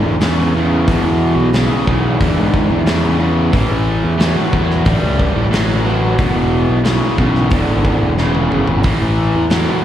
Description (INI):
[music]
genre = blues rock power trio and southern rock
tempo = 90 BPM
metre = 4/4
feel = straight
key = E mixolydian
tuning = A4 = 440 Hz
[part]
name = cranked stack guitar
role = riff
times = 0.0-9.8 s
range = E2 to G3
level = -16 LUFS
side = equal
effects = overdrive, slapback echo
[part]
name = fuzz fingered electric bass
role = bass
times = 0.0-9.7 s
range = E1 to G#2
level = -16 LUFS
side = equal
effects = overdrive
[part]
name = big rock drum kit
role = drums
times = 0.2-9.7 s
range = hi-hat, kick drum, snare drum, toms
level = -19 LUFS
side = equal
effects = none
[sound]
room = light reverb, studio reverb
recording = live gig heard through the venue's PA, recital hall reverb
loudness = -12 LUFS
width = side -11 dB against mid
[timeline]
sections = 0.0-9.8 A section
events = drum fill 8.2-8.8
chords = 0.0 E7(no3); 3.5 A7(no3); 6.2 E7; 8.8 A5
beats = 0.22 | 0.88 1.55 2.21 2.87 | 3.54 4.20 4.86 5.53 | 6.19 6.86 7.52 8.18 | 8.85 9.51